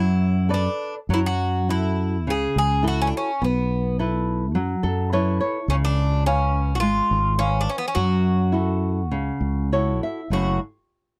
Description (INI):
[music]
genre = fado-style ballad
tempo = 105 BPM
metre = 4/4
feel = rubato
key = F# minor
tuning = A4 = 440 Hz
[part]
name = Greek bouzouki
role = melody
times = 0.0-10.6 s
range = B3 to G#4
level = -28 LUFS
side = equal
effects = none
[part]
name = flamenco guitar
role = accompaniment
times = 0.0-10.6 s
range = F#2 to E#5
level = -28 LUFS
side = equal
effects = none
[part]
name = fretless electric bass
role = bass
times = 0.0-10.6 s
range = F#1 to F#2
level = -24 LUFS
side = equal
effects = none
[sound]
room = little or no reverb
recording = dry, close 1970s-style studio recording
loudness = -22 LUFS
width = mono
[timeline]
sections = 0.0-1.1 A section; 1.1-10.3 B section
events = nylon-string guitar fill 4.6-5.7, 9.4-10.3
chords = 0.0 Bm7; 1.1 F#m7; 3.4 B7sus4; 5.7 C#7; 8.0 F#m7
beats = 0.49 | 1.09 1.68 2.27 2.85 | 3.42 3.99 4.55 5.12 | 5.68 6.25 6.81 7.38 | 7.96 8.53 9.12 9.71 | 10.31